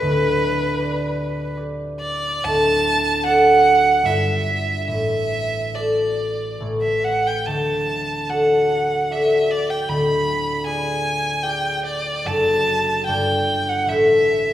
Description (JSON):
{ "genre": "classical, romantic duo for violin and harp", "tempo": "66-79 BPM", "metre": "3/4", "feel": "rubato", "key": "D major", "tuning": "A4 = 440 Hz", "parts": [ { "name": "rich violin", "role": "melody", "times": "0.0-14.5 s", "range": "B4 to B5", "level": "-20 LUFS", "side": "right 2 dB", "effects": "none" }, { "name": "concert harp", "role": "accompaniment", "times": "0.0-14.5 s", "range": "D1 to D5", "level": "-20 LUFS", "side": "left 1 dB", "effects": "none" } ], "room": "wet recital hall reverb, RT60 1.8 s", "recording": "recorded in a church or concert hall", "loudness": "-17 LUFS", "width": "side -12 dB against mid", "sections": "0.0-14.5 A section", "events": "none", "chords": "0.0 G/D; 2.4 D; 4.0 Em/G; 4.9 D/A; 6.6 A; 7.5 D; 9.9 Ddim7; 12.3 D/F#; 13.1 G; 13.9 A7" }